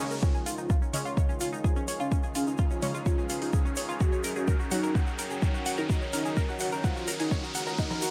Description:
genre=melodic techno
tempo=127 BPM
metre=4/4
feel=straight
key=unclear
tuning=A4 = 442 Hz
part: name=dark analog pad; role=sustained chords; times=0.9-8.1 s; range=Eb3 to Bb5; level=-44 LUFS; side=equal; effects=chorus, sidechain pumping
part: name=analog pluck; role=arpeggios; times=0.0-8.1 s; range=Db4 to Gb5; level=-38 LUFS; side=equal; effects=chorus, phaser, sidechain pumping, delay
part: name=synth brass stab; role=stabs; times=0.0-6.6 s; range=Db3 to Gb4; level=-40 LUFS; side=equal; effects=chorus, sidechain pumping, delay
part: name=overtone-sweeping drone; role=drone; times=0.4-8.1 s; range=Eb3 to Eb4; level=-47 LUFS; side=equal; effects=none
part: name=riser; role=sound effects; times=0.0-8.1 s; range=none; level=-42 LUFS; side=equal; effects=none
part: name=granular cloud pad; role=texture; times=0.3-8.1 s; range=Db4 to Gb5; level=-43 LUFS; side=equal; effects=built-in reverb, sidechain pumping
part: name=tube shaker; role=percussion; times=0.1-8.1 s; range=none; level=-43 LUFS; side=equal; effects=none
part: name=fat analog lead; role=melody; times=0.2-8.0 s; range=Db4 to Gb4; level=-38 LUFS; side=equal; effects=phaser, subtle chorus, sidechain pumping, delay
part: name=electronic kick drum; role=drums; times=0.2-7.9 s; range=none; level=-29 LUFS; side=equal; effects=none
part: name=dark detuned saw bass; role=bass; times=0.5-8.1 s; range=Gb1 to Gb2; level=-45 LUFS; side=equal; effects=none
part: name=electronic hi-hat and congas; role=drums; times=0.5-8.1 s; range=none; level=-39 LUFS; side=equal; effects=none
room=light reverb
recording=high-pass filter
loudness=-29 LUFS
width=mono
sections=0.2-8.1 A section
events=riser 0.0, 0.2-8.1; build-up 0.2-8.1; filter sweep 0.2-8.1; drum fill 7.8-8.1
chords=0.2 Db; 4.0 Gb

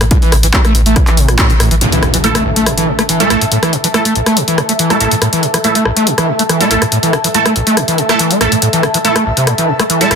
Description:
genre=driving peak-time techno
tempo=141 BPM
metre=4/4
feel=straight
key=unclear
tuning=A4 = 440 Hz
part: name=screaming distorted acid line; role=riff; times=0.0-10.2 s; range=A1 to A3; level=-14 LUFS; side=equal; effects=distortion, wide subtle chorus, sidechain pumping, tape echo
part: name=warm sub bass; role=bass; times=0.0-1.8 s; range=A1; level=-13 LUFS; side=equal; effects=tube saturation, sidechain pumping, low-pass filter
part: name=punchy analog drum machine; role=drums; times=0.0-10.2 s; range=handclaps, hi-hat, rim click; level=-15 LUFS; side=left 2 dB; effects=soft clipping on snare, sidechain pumping on hats
part: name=electronic kick drum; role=drums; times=0.1-1.5 s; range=none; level=-12 LUFS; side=equal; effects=none
part: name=impact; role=sound effects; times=1.8-3.5 s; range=none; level=-18 LUFS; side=equal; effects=none
part: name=airy breathy pad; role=texture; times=1.8-10.2 s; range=A4 to A5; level=-19 LUFS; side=equal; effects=chorus, sidechain pumping
part: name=rave stab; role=stabs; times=2.2-10.2 s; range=A3 to A4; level=-17 LUFS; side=right 4 dB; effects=chorus, built-in reverb, phaser, vintage 12-bit sampler grit, sidechain pumping, tape echo
room=moderate stone room reverb, RT60 0.9 s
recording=dense, heavily limited modern master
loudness=-9 LUFS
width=side -6 dB against mid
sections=0.0-1.8 A section; 1.8-10.2 B section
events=band accent 1.4; impact 1.8-3.5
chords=0.0 A5

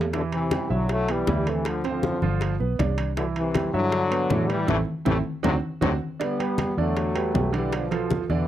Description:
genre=latin, salsa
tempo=158 BPM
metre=4/4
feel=straight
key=unclear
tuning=A4 = 440 Hz
part: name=clear grand piano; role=accompaniment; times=0.0-8.5 s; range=D3 to E5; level=-28 LUFS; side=right 8 dB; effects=none
part: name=vintage muted fingered electric bass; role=bass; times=0.0-8.5 s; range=G1 to A2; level=-27 LUFS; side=equal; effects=none
part: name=timbales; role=percussion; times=0.0-8.3 s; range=none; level=-35 LUFS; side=right 5 dB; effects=none
part: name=bright trombone section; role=melody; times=0.1-8.5 s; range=B2 to B3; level=-26 LUFS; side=left 3 dB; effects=none
part: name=bongos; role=percussion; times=0.1-8.5 s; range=none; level=-31 LUFS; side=left 6 dB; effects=none
part: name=congas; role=percussion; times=0.1-8.3 s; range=none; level=-31 LUFS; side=left 2 dB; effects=none
room=light reverb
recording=dry, close 1970s-style studio recording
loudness=-22 LUFS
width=side -12 dB against mid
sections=0.0-6.2 A section; 6.2-8.5 B section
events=band accent 4.7-6.2; drum fill 5.3-6.2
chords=0.1 Em9; 1.7 Dm7; 2.4 G7; 3.2 Cmaj9; 4.7 Am7; 5.4 D7; 6.2 Em7; 7.7 Bm7b5

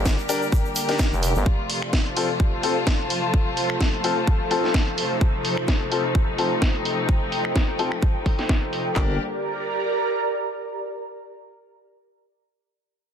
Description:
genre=bass house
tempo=128 BPM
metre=4/4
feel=swing 54% on 16ths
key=G minor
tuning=A4 = 440 Hz
part: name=rich studio string section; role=sustained chords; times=0.0-9.2 s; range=C3 to G4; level=-29 LUFS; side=left 2 dB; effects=sidechain pumping, low-pass filter
part: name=growling FM bass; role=bass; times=0.0-1.4, 9.0-9.2 s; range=F1 to G1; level=-24 LUFS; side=equal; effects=overdrive, sidechain pumping
part: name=airy breathy pad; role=texture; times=0.0-10.8 s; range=F4 to Bb5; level=-27 LUFS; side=right 1 dB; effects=chorus, sidechain pumping
part: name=garage drum kit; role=drums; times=0.1-9.1 s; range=handclaps, kick drum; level=-21 LUFS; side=equal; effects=studio reverb
part: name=garage drum kit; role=drums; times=0.1-8.8 s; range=finger snaps, hi-hat, snare drum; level=-27 LUFS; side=right 1 dB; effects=low-pass filter on hats, studio reverb, soft clipping on snare, low-pass filter on snare
part: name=egg shaker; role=percussion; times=0.1-1.4 s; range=none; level=-36 LUFS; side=right 3 dB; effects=none
part: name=bright concert grand piano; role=stabs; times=0.3-9.1 s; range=C4 to Bb4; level=-27 LUFS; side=left 5 dB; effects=sidechain pumping, low-pass filter, tape echo
room=light reverb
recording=dense, heavily limited modern master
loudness=-20 LUFS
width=side -8 dB against mid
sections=0.0-9.0 A section; 9.0-10.8 B section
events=filter sweep on grand piano 0.0-9.0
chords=0.0 Gm; 1.5 F; 9.0 Gm

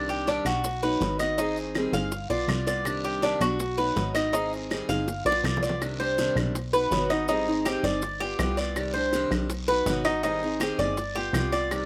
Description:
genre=latin, Cuban son and guajira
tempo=163 BPM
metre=4/4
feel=straight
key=C minor, C harmonic minor from 5.8 s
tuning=A4 = 440 Hz
part: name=picked steel-string acoustic guitar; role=accompaniment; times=0.0-11.9 s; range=B2 to Ab4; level=-33 LUFS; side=equal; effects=slapback echo
part: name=Cuban tres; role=arpeggios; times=0.0-11.9 s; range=D4 to F5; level=-29 LUFS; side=equal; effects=slapback echo
part: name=plucky analog bass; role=bass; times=0.0-11.9 s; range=G1 to C2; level=-34 LUFS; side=equal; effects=none
part: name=maracas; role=percussion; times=0.1-11.9 s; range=none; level=-44 LUFS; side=equal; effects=none
part: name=bongos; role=percussion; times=0.3-11.9 s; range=none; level=-37 LUFS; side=equal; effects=none
part: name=guiro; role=percussion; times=0.3-11.9 s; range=none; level=-43 LUFS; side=equal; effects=none
part: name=claves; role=percussion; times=0.5-11.9 s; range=none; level=-38 LUFS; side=equal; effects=none
room=little or no reverb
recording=recorded outdoors, with no room sound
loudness=-26 LUFS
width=mono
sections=0.0-5.8 A section; 5.8-11.9 B section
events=drum fill 5.1-5.8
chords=0.0 Cmadd9; 0.6 B; 1.4 Abmaj7; 2.1 G7; 2.9 Cmadd9; 3.6 B; 4.3 Abmaj7; 5.1 G7; 5.8 Cmadd9; 6.5 B; 7.3 Abmaj7; 8.0 G7; 8.8 Cmadd9; 9.5 B; 10.2 Abmaj7; 11.0 G7

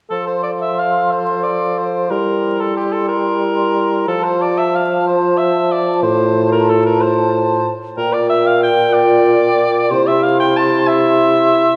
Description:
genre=classical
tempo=184 BPM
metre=3/4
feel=uneven beats, rubato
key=F major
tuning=A4 = 443 Hz
part: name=clear clarinet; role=second line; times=0.1-11.8 s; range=E4 to A4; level=-22 LUFS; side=equal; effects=none
part: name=mellow cor anglais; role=second line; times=0.1-11.8 s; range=G4 to A5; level=-20 LUFS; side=equal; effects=none
part: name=mellow large flute ensemble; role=second line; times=0.1-11.8 s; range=G5 to C6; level=-25 LUFS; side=equal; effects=none
part: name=dark bassoon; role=accompaniment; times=0.1-11.8 s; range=A2 to G3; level=-20 LUFS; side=equal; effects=none
room=wet concert hall reverb, RT60 2.4 s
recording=dark, warm production, vinyl crackle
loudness=-15 LUFS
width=mono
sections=0.1-11.8 A section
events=none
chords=0.1 F; 2.1 C7/G; 4.1 F; 6.0 F/A; 8.0 Gm7/Bb; 9.9 C

